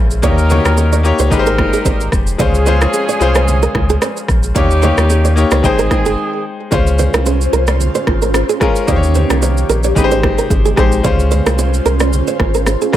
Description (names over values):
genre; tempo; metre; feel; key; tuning
afrobeats; 111 BPM; 4/4; swing 55% on 16ths; unclear; A4 = 439 Hz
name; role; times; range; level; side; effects
bright concert grand piano; accompaniment; 0.0-13.0 s; Ab3 to G5; -18 LUFS; left 4 dB; none
sub bass with octave; bass; 0.0-12.8 s; F1 to Eb2; -15 LUFS; equal; none
afro-pop drum kit; drums; 0.1-13.0 s; kick drum, rim click, shaker; -17 LUFS; equal; none
warm horn section; second line; 0.2-6.4 s; Eb3 to Bb4; -20 LUFS; right 3 dB; none
nylon-string guitar; riff; 0.2-13.0 s; Ab4 to Db5; -20 LUFS; right 6 dB; tape echo
congas and bongos; percussion; 0.3-12.8 s; none; -24 LUFS; right 4 dB; none
airy breathy pad; sustained chords; 6.7-13.0 s; C3 to C5; -20 LUFS; right 2 dB; chorus, phaser
room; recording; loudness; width
small room ambience; none; -11 LUFS; side -12 dB against mid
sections
0.0-6.7 A section; 6.7-13.0 B section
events
break 6.2-6.7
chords
0.2 Eb7; 1.3 Abmaj7; 2.4 Dbmaj7; 4.6 Eb7; 5.6 Abmaj7; 6.7 Dbmaj7; 8.9 Eb7; 10.0 Abmaj7; 11.0 Dbmaj7